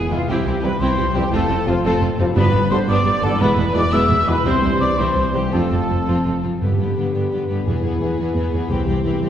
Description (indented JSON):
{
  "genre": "cinematic",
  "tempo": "115 BPM (dotted quarters)",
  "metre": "6/8",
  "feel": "straight",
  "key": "G mixolydian",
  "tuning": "A4 = 440 Hz",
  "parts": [
    { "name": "warm symphonic violin section", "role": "melody", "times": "0.0-9.3 s", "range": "D4 to G#4", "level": "-32 LUFS", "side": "left 3 dB", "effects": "none" },
    { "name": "hollow concert flute", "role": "second line", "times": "0.0-6.4 s", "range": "F5 to E6", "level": "-23 LUFS", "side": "left 1 dB", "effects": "none" },
    { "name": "rich studio violin section", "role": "second line", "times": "0.0-9.3 s", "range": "B3 to E5", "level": "-28 LUFS", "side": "left 3 dB", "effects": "none" },
    { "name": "concert harp", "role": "arpeggios", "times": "0.0-9.3 s", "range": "E2 to C5", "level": "-27 LUFS", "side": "left 4 dB", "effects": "none" },
    { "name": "bright trumpet section", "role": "stabs", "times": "0.0-6.4 s", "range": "F4 to E5", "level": "-27 LUFS", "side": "equal", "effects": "none" },
    { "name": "rich studio viola section", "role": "accompaniment", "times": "0.1-9.3 s", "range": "D3 to E4", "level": "-25 LUFS", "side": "right 1 dB", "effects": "none" },
    { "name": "dark French horn section", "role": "sustained chords", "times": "0.1-9.3 s", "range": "D3 to G#4", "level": "-26 LUFS", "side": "left 1 dB", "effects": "none" },
    { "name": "warm trombone section", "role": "sustained chords", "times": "0.1-6.4 s", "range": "F2 to G#3", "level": "-28 LUFS", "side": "right 2 dB", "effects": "none" },
    { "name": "rich symphonic cello section", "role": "bass", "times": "0.1-9.3 s", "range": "C2 to G2", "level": "-24 LUFS", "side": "right 1 dB", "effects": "none" },
    { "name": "rich symphonic double bass section", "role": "bass", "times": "0.1-8.9 s", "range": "E1 to C2", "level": "-25 LUFS", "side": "right 1 dB", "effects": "none" },
    { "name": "timpani", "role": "percussion", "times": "2.4-2.9, 6.6-7.1 s", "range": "G2", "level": "-24 LUFS", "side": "right 1 dB", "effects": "none" }
  ],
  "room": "wet scoring stage reverb, RT60 1.6 s",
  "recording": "heard from further back in the room",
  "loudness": "-16 LUFS",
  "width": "side -9 dB against mid",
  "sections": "0.0-6.6 A section; 6.6-9.3 B section",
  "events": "none",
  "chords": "0.3 C; 1.3 F; 2.4 G; 3.4 E; 4.5 C; 5.5 F; 6.6 G; 7.7 E; 8.7 C",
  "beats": "| 0.29 0.81 | 1.33 1.85 | 2.37 2.89 | 3.41 3.93 | 4.46 4.99 | 5.53 6.07 | 6.61 7.14 | 7.66 8.18 | 8.70 9.22"
}